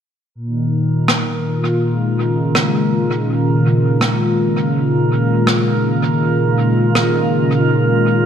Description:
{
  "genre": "ambient dub",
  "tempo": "82 BPM",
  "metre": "4/4",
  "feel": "swing 54% on 16ths",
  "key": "Bb minor",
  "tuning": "A4 = 443 Hz",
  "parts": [
    { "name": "drifting glass-harmonics texture", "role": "texture", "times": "0.9-8.3 s", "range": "Bb4", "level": "-23 LUFS", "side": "right 7 dB", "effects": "chorus, built-in reverb" },
    { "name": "warm analog pad", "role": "sustained chords", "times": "0.4-8.3 s", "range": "Bb2 to F4", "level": "-15 LUFS", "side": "left 1 dB", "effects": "chorus" },
    { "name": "rim click", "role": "drums", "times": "1.1-7.1 s", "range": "none", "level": "-20 LUFS", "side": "equal", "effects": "dub echo" }
  ],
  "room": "wet echo chamber reverb, RT60 2.2 s",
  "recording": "none",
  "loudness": "-14 LUFS",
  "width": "side -8 dB against mid",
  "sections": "0.4-8.3 A section",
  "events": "none",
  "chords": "0.4 Bbm7"
}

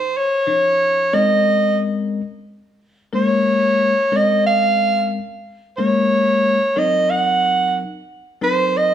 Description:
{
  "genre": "jazz",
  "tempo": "91 BPM",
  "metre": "4/4",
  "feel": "straight",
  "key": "Bb minor",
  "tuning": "A4 = 436 Hz",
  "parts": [
    { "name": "breathy soprano saxophone", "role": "melody", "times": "0.0-8.9 s", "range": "C5 to Gb5", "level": "-16 LUFS", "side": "right 2 dB", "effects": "none" },
    { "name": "bell-like tine electric piano", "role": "accompaniment", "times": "0.5-8.9 s", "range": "F3 to Db5", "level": "-21 LUFS", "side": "left 4 dB", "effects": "none" }
  ],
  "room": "wet stone room reverb, RT60 1.3 s",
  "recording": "band playing live in one room",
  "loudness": "-15 LUFS",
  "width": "side -10 dB against mid",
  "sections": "0.0-8.9 A section",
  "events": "soprano saxophone solo 0.0-8.9",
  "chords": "0.0 Dbadd9; 1.1 Bbm9; 6.8 Cm7b5"
}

